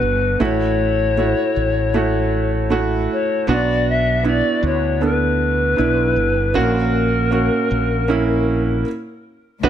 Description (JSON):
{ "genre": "pop ballad", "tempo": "78 BPM", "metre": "4/4", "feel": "straight", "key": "unclear", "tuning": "A4 = 435 Hz", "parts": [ { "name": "bright reedy polished pan flute", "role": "melody", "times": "0.0-8.9 s", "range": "A#4 to E5", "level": "-21 LUFS", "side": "left 4 dB", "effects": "none" }, { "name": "warm concert grand piano", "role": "accompaniment", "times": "0.0-9.7 s", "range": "A2 to B4", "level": "-19 LUFS", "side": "right 4 dB", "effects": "none" }, { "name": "mellow fretless electric bass", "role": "bass", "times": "0.0-9.7 s", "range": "G1 to D2", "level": "-21 LUFS", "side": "equal", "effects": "ensemble chorus" }, { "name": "warm symphonic cello section", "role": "second line", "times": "9.6-9.7 s", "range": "D2 to F#3", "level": "-26 LUFS", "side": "left 5 dB", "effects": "none" } ], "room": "light reverb, small room ambience", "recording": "none", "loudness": "-16 LUFS", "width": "side -10 dB against mid", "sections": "0.0-9.6 A section", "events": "stop 8.9-9.6", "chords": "0.4 F#m7/A; 3.5 Bm; 6.6 F#/A#", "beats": "| 0.40 1.17 1.94 2.71 | 3.48 4.25 5.02 5.79 | 6.56 7.33 8.10 8.86 | 9.63" }